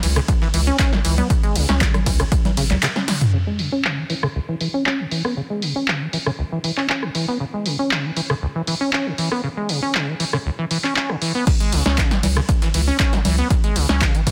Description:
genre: acid house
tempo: 118 BPM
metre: 4/4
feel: straight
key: C# minor pentatonic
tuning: A4 = 440 Hz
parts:
  - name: acid bass, saw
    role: riff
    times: 0.0-14.3 s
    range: C#2 to C#4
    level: -25 LUFS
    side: equal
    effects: tube saturation, subtle chorus, sidechain pumping, dub echo
  - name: saturated sub bass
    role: bass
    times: 0.0-2.7, 11.7-14.3 s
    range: G#1 to C#2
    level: -22 LUFS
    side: equal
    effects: sidechain pumping
  - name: breakbeat sampler-style drum kit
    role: drums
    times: 0.0-3.2, 11.5-14.3 s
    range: hi-hat, snare drum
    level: -37 LUFS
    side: equal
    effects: none
  - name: punchy analog drum machine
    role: drums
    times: 0.0-14.3 s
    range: congas, crash cymbal, handclaps, hi-hat, ride cymbal, rim click, snare drum, toms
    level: -25 LUFS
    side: equal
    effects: overdrive, low-pass filter on hats, low-pass filter on cymbals, low-pass filter on snare, low-pass filter on perc, low-pass filter on toms
  - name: electronic kick drum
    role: drums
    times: 0.3-2.4, 11.5-14.3 s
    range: none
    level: -21 LUFS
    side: equal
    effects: overdrive
room: light reverb, digital ambience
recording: dense, heavily limited modern master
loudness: -20 LUFS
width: mono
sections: 0.0-3.3 A section; 3.3-11.5 B section; 11.5-14.3 A section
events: drop 0.0-3.3, 11.5-14.3; drum fill 3.0-3.3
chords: 0.0 C#m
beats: 0.28 0.79 | 1.30 1.81 2.32 2.83 | 3.33 3.84 4.35 4.86 | 5.37 5.88 6.39 6.89 | 7.40 7.91 8.42 8.93 | 9.44 9.95 10.45 10.96 | 11.47 11.98 12.49 13.00 | 13.50 14.01

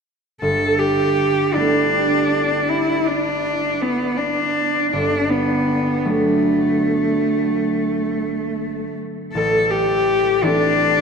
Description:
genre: classical, impressionist duo for cello and harp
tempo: 54 BPM (dotted quarters)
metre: 12/8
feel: rubato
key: G major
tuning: A4 = 440 Hz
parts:
  - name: clear cello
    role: melody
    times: 0.4-11.0 s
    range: A3 to A4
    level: -18 LUFS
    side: left 1 dB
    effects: none
  - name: concert harp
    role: accompaniment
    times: 0.4-11.0 s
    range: G1 to E4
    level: -21 LUFS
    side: right 2 dB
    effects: none
room: wet cathedral reverb, RT60 5.3 s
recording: in a vast, echoing space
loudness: -16 LUFS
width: side -5 dB against mid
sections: 0.4-11.0 A section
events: none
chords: 0.4 G69; 4.9 Bm7/G; 9.3 Am7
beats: | 0.41 1.56 2.69 3.82 | 4.94 6.07 7.16 8.25 | 9.34 10.44

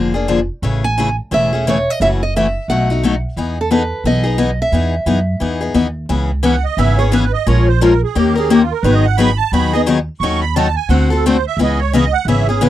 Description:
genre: acoustic string swing (jazz manouche)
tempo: 175 BPM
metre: 4/4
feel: swing 60% on 8ths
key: unclear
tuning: A4 = 439 Hz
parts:
  - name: picked steel-string acoustic guitar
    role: accompaniment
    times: 0.0-12.7 s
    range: B2 to A#4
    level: -15 LUFS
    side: left 4 dB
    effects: none
  - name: upright bass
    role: bass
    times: 0.0-12.7 s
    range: E1 to F#2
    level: -17 LUFS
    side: right 1 dB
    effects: none
  - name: picked steel-string acoustic guitar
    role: melody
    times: 0.8-5.7 s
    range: A4 to G#5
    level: -18 LUFS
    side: right 2 dB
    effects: none
  - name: musette accordion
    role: second line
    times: 6.5-12.7 s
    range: F4 to C#6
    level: -19 LUFS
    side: right 10 dB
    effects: none
room: light reverb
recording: dry, close 1970s-style studio recording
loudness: -13 LUFS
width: side -13 dB against mid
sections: 0.0-6.1 A section; 6.1-12.7 B section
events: accordion solo 6.1-12.7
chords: 0.0 A#7; 0.6 Amaj7; 2.0 F#m7; 2.7 B7; 3.4 Emaj7; 6.1 C#m7; 7.5 A#m7; 8.2 D#7; 8.8 G#m7; 10.2 D#m7b5; 10.9 D7; 11.6 C#m7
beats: 0.28 | 0.62 0.96 1.31 1.65 | 1.99 2.33 2.68 3.02 | 3.36 3.71 4.05 4.39 | 4.73 5.08 5.42 5.76 | 6.11 6.45 6.79 7.13 | 7.47 7.82 8.16 8.50 | 8.84 9.19 9.53 9.87 | 10.21 10.56 10.90 11.24 | 11.58 11.93 12.27 12.61

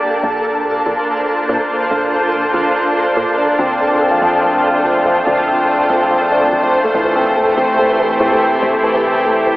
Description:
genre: IDM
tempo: 143 BPM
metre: 4/4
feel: straight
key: unclear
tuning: A4 = 439 Hz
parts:
  - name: granular cloud pad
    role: sustained chords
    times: 0.0-9.6 s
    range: A3 to C5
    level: -16 LUFS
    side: equal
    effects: built-in reverb, vintage 12-bit sampler grit
  - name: flickering grainy texture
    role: texture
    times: 0.0-9.6 s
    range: A4 to A5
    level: -20 LUFS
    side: equal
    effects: built-in reverb
  - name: woody FM bass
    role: bass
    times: 0.2-9.3 s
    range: D1 to Bb2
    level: -21 LUFS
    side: equal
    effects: tube saturation
  - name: felt-muted upright piano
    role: arpeggios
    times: 3.4-9.6 s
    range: E3 to D4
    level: -15 LUFS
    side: equal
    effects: vintage 12-bit sampler grit, dub echo
room: moderate plate reverb, RT60 3.3 s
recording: rough home demo mix, telephone sound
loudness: -12 LUFS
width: side -18 dB against mid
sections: 0.0-9.6 A section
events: none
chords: 0.0 Bbadd9; 3.4 Dm7; 6.7 Am7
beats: | 0.02 0.44 0.86 1.28 | 1.70 2.12 2.54 2.96 | 3.38 3.80 4.22 4.64 | 5.06 5.48 5.90 6.32 | 6.74 7.16 7.58 7.99 | 8.41 8.83 9.25

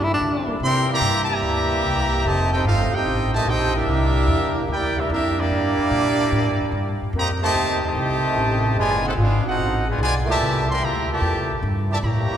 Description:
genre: jazz, big band swing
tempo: 147 BPM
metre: 4/4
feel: swing 67% on 8ths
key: unclear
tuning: A4 = 440 Hz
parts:
  - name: warm tenor saxophone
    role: melody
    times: 0.0-0.5 s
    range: D4 to E4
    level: -25 LUFS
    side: left 1 dB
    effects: none
  - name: upright bass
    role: bass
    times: 0.0-12.3 s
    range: F1 to D3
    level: -23 LUFS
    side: equal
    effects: none
  - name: clear trombone section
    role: sustained chords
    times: 0.5-0.6 s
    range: C2 to A4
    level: -37 LUFS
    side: equal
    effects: none
  - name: brilliant trumpet section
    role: melody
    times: 0.6-12.4 s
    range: Bb3 to C6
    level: -22 LUFS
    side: right 1 dB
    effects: none
  - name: mellow trombone section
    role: second line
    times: 0.6-12.4 s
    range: Bb2 to G4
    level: -25 LUFS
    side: right 1 dB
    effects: none
room: wet church reverb, RT60 3.4 s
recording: recorded in a church or concert hall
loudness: -18 LUFS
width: side -9 dB against mid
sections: 0.6-12.4 A section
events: none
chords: 0.0 Gsus2; 0.6 C9; 2.2 F9; 3.9 C9; 7.1 F9; 8.8 F#dim7; 10.4 C13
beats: 0.21 | 0.62 1.02 1.43 1.84 | 2.25 2.65 3.06 3.47 | 3.88 4.29 4.69 5.10 | 5.51 5.92 6.32 6.73 | 7.14 7.54 7.95 8.36 | 8.77 9.18 9.58 9.99 | 10.40 10.80 11.21 11.62 | 12.03

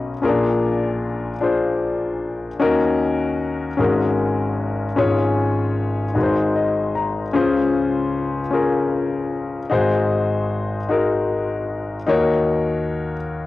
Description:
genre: gospel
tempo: 51 BPM (dotted quarters)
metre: 6/8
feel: straight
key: Db major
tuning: A4 = 440 Hz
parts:
  - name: warm concert grand piano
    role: solo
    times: 0.0-13.5 s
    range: Ab1 to Bb5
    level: -18 LUFS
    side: left 2 dB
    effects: cassette tape
room: light reverb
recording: home recording on cassette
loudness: -18 LUFS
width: side -16 dB against mid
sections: 0.0-13.5 A section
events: grand piano fill 6.2-7.3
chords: 0.2 Bb7; 2.6 Ebm7; 3.8 Ab9sus4; 5.0 Db/Ab; 6.2 Ab7; 7.3 Dbmaj7; 9.7 Ab7; 12.1 Ebm7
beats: | 0.23 1.42 | 2.60 3.79 | 4.97 6.15 | 7.34 8.52 | 9.71 10.89 | 12.07 13.25

